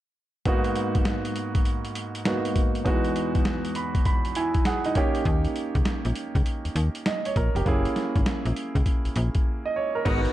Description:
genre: R&B, new jack swing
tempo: 100 BPM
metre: 4/4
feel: swing 64% on 16ths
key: G# minor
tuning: A4 = 441 Hz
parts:
  - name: warm grand piano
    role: accompaniment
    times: 0.5-10.3 s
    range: E2 to B5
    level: -27 LUFS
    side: right 2 dB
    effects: none
  - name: boom bap sampler-style drum kit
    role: drums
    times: 0.5-10.3 s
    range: crash cymbal, hi-hat, kick drum, snare drum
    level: -25 LUFS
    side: equal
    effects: none
  - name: slap-like FM bass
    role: bass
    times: 5.3-10.3 s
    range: E#1 to D#2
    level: -25 LUFS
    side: equal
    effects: none
  - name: percussive tonewheel organ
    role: stabs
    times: 10.1-10.2 s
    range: B3 to G#4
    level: -30 LUFS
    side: left 2 dB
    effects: overdrive, chorus vibrato, slow rotary speaker
room: light reverb, digital ambience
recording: dark, warm production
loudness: -23 LUFS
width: side -14 dB against mid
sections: 0.5-10.1 A section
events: grand piano fill 3.5-5.3; break 9.5-10.1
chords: 0.5 G#m7; 2.9 Emaj7; 5.0 D#7; 7.7 F#9 (rootless)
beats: | 0.46 1.06 1.66 2.26 | 2.86 3.46 4.06 4.66 | 5.26 5.86 6.46 7.06 | 7.66 8.26 8.86 9.46 | 10.06

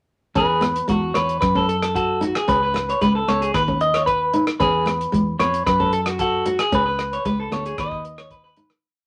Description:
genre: highlife guitar band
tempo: 113 BPM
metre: 4/4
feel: straight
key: E major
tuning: A4 = 440 Hz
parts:
  - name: semi-hollow electric guitar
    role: melody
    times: 0.4-8.5 s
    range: F#4 to D#5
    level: -24 LUFS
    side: equal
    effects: none
  - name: flamenco guitar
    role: accompaniment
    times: 0.4-8.7 s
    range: G#3 to D#4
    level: -26 LUFS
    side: equal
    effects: none
  - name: clean electric guitar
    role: arpeggios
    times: 0.4-8.7 s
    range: F#4 to C#5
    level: -26 LUFS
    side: equal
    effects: none
  - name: fingered electric bass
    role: bass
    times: 0.4-8.7 s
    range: C#2 to F#2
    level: -29 LUFS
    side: equal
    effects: none
  - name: warm soul drum kit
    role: drums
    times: 0.4-8.8 s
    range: hi-hat, kick drum, rim click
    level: -31 LUFS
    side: equal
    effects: none
room: moderate studio reverb, RT60 0.5 s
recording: none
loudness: -20 LUFS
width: mono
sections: 0.4-8.8 A section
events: fade-out 6.7-8.8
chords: 0.4 Eadd9; 1.4 F#m; 2.5 C#5; 3.5 B/D#; 4.6 E; 5.7 F#m; 6.7 C#5; 7.8 B/D#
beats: | 0.35 0.89 1.42 1.95 | 2.48 3.01 3.55 4.08 | 4.61 5.14 5.67 6.19 | 6.72 7.25 7.78 8.30

